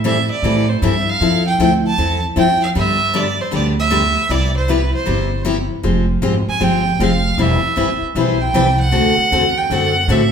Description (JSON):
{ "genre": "acoustic string swing (jazz manouche)", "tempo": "155 BPM", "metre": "4/4", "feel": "swing 63% on 8ths", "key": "C major", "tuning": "A4 = 440 Hz", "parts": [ { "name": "picked steel-string acoustic guitar", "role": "accompaniment", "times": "0.0-10.2 s", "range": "C3 to B4", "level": "-18 LUFS", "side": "left 4 dB", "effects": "none" }, { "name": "upright bass", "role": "bass", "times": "0.0-10.3 s", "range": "E1 to A2", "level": "-19 LUFS", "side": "right 1 dB", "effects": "none" }, { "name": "clear violin", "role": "melody", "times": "0.1-10.3 s", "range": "B4 to A5", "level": "-18 LUFS", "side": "right 3 dB", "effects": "none" } ], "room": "wet large studio reverb, RT60 1.2 s", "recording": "band playing live in one room", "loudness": "-14 LUFS", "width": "side -7 dB against mid", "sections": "0.0-5.8 A section; 5.8-10.3 B section", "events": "none", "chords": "0.0 Am7; 1.2 Fmaj7; 2.7 G; 4.3 Cmaj7; 5.8 Fmadd9; 7.4 Cmaj7/E; 8.9 D7" }